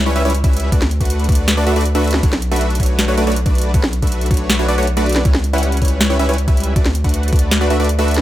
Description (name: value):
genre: future bass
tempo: 159 BPM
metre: 4/4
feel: half-time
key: B minor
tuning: A4 = 440 Hz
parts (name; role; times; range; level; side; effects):
- supersaw stab; riff; 0.0-8.2 s; G3 to F#5; -19 LUFS; equal; sidechain pumping, dub echo
- saturated sub bass; bass; 0.0-8.2 s; B1 to D2; -18 LUFS; equal; sidechain pumping
- trap drum kit; drums; 0.2-8.2 s; hi-hat, snare drum; -20 LUFS; equal; none
- electronic kick drum; drums; 0.4-7.4 s; none; -15 LUFS; equal; none
room: little or no reverb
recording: none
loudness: -13 LUFS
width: side -14 dB against mid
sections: 0.0-8.2 A section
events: none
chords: 0.0 C#m7b5; 0.7 D6; 2.2 Bm9; 5.3 C#m7b5; 6.8 D6